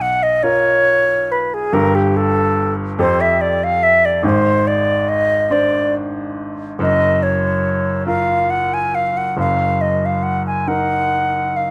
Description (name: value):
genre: classical, impressionist duo for flute and grand piano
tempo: 47 BPM (dotted quarters)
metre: 6/8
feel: rubato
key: unclear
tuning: A4 = 440 Hz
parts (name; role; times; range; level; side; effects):
- concert flute; melody; 0.0-11.7 s; G4 to Ab5; -18 LUFS; equal; none
- clear baby grand piano; accompaniment; 0.0-11.7 s; Gb1 to C5; -22 LUFS; equal; none
room: light reverb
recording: close, detailed microphones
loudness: -17 LUFS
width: mono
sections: 0.0-11.7 A section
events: none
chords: 0.0 Bmaj7(b5, no3); 1.7 Gsus2; 3.0 Fadd9; 4.2 Ab; 6.8 Gbmaj7; 9.4 Gbmaj13